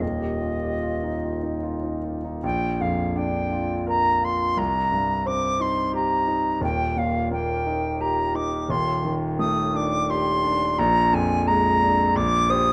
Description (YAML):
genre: classical, impressionist duo for flute and grand piano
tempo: 72-89 BPM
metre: 3/4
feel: rubato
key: unclear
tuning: A4 = 440 Hz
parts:
  - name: silver concert flute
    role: melody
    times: 0.0-12.7 s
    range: Eb5 to Eb6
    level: -26 LUFS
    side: equal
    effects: none
  - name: warm concert grand piano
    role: accompaniment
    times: 0.0-12.7 s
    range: Eb1 to C5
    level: -27 LUFS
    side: equal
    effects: none
room: light reverb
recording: close, detailed microphones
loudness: -23 LUFS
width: mono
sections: 0.0-2.4 A section; 2.4-12.7 B section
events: none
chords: 0.0 Ebadd9; 2.4 Bb; 4.6 Cm7; 6.6 Eb; 8.7 Cm69/Eb; 10.8 Bb7; 12.2 Bb69